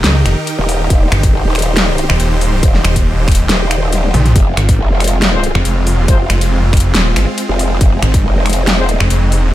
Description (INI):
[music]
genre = heavy wobble dubstep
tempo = 139 BPM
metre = 4/4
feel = swing 54% on 16ths, half-time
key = F minor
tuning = A4 = 440 Hz
[part]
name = supersaw chords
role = sustained chords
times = 0.0-9.5 s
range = Eb3 to C5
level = -20 LUFS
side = right 1 dB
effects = sidechain pumping
[part]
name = snarling distorted saw bass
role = bass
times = 0.0-9.5 s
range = Eb1 to Db2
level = -12 LUFS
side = equal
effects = distortion, overdrive
[part]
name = dubstep drum kit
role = drums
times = 0.0-9.4 s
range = finger snaps, hi-hat, snare drum, toms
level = -17 LUFS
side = left 1 dB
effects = none
[part]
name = growl bass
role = bass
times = 0.6-9.0 s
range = Eb1 to Ab1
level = -15 LUFS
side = equal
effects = chorus, overdrive
[part]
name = electronic kick drum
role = drums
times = 0.9-8.2 s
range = none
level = -13 LUFS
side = equal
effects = none
[part]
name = mellow brass ensemble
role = stabs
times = 5.3-6.2, 8.8-8.9 s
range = Ab3 to C5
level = -23 LUFS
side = left 5 dB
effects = ping-pong delay
[sound]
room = little or no reverb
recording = none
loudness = -10 LUFS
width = side -14 dB against mid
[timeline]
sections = 0.0-9.5 A section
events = drum fill 3.9-4.4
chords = 0.0 Eb; 4.4 Fm